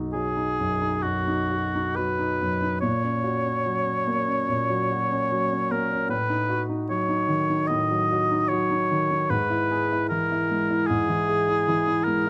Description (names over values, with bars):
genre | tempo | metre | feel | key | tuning
classical, romantic duo for oboe and grand piano | 61-78 BPM | 4/4 | rubato | B major | A4 = 440 Hz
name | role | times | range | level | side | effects
clear concert grand piano | accompaniment | 0.0-12.3 s | B1 to G#4 | -28 LUFS | equal | none
warm oboe | melody | 0.1-12.3 s | F#4 to D#5 | -27 LUFS | equal | none
room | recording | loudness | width
light reverb | close, detailed microphones | -24 LUFS | mono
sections
0.0-12.3 A section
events
none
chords
0.0 B; 2.8 F#/A#; 6.1 B9/A (rootless); 9.3 E/G#